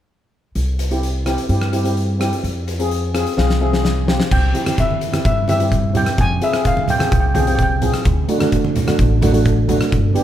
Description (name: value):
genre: calypso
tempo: 128 BPM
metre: 4/4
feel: straight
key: C major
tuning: A4 = 440 Hz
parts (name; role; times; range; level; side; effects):
- upright bass; bass; 0.6-10.1 s; G1 to G2; -18 LUFS; equal; none
- oversized low-tuned drum kit; drums; 0.6-10.2 s; crash cymbal, hi-hat, kick drum, rim click, snare drum; -21 LUFS; equal; none
- steel pan; accompaniment; 0.9-10.2 s; A3 to Ab5; -21 LUFS; equal; none
- steel pan; melody; 4.3-7.7 s; E5 to Ab5; -21 LUFS; equal; plate reverb
- congas; percussion; 4.7-9.8 s; none; -23 LUFS; right 2 dB; none
room: light reverb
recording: none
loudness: -15 LUFS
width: side -11 dB against mid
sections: 0.6-4.3 A section; 4.3-10.2 B section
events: steel pan fill 2.9-4.3; drum fill 3.4-4.3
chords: 0.6 C; 2.4 Fmadd9; 4.3 C; 6.2 Fmadd9; 8.1 D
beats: | 0.55 1.02 1.50 1.97 | 2.44 2.91 3.38 3.85 | 4.31 4.78 5.25 5.72 | 6.19 6.65 7.12 7.59 | 8.06 8.52 8.99 9.46 | 9.92